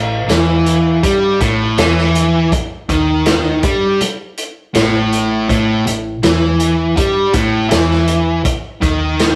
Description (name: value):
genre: blues rock power trio and southern rock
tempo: 81 BPM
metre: 4/4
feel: straight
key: unclear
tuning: A4 = 440 Hz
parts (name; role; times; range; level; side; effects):
- overdriven electric guitar; riff; 0.0-9.4 s; A2 to G3; -16 LUFS; equal; none
- vintage muted picked electric bass; bass; 0.0-9.4 s; A1 to G2; -23 LUFS; equal; none
- vintage drum kit; drums; 0.3-9.4 s; hi-hat, kick drum, snare drum; -19 LUFS; equal; none
room: moderate stone room reverb, RT60 0.9 s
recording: rough rehearsal-room recording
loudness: -14 LUFS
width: mono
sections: 0.0-9.4 A section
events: none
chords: 0.0 A5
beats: 0.29 1.03 1.78 | 2.52 3.27 4.01 4.75 | 5.49 6.23 6.97 7.72 | 8.46 9.20